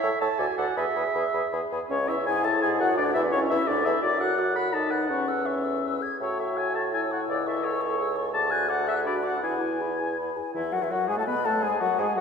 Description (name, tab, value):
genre	quick classical-period movement for wind quintet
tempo	156-174 BPM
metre	3/4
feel	rubato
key	A major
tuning	A4 = 439 Hz
part	silver concert flute	melody	0.0-12.2 s	C#5 to G#6	-31 LUFS	left 7 dB	none
part	mellow oboe	second line	0.0-12.2 s	E4 to B5	-29 LUFS	left 2 dB	none
part	mellow French horn	accompaniment	0.0-12.2 s	E3 to B4	-32 LUFS	left 1 dB	none
part	warm clarinet	accompaniment	0.0-12.2 s	C#4 to A5	-32 LUFS	right 5 dB	none
part	clear bassoon	bass	0.0-12.2 s	C#2 to B2	-30 LUFS	right 1 dB	none
room	wet concert hall reverb, RT60 2.1 s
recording	none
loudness	-23 LUFS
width	side -6 dB against mid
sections	0.0-1.9 A section; 1.9-10.5 B section; 10.5-12.2 C section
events	none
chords	0.4 D; 0.8 E; 1.9 A/C#; 4.0 D/F#; 4.7 B7/F#; 5.1 A/E; 5.8 E; 6.2 A; 7.3 A/C#; 8.3 D; 9.0 Bm/D; 9.4 E; 10.5 A5/E; 11.6 N.C.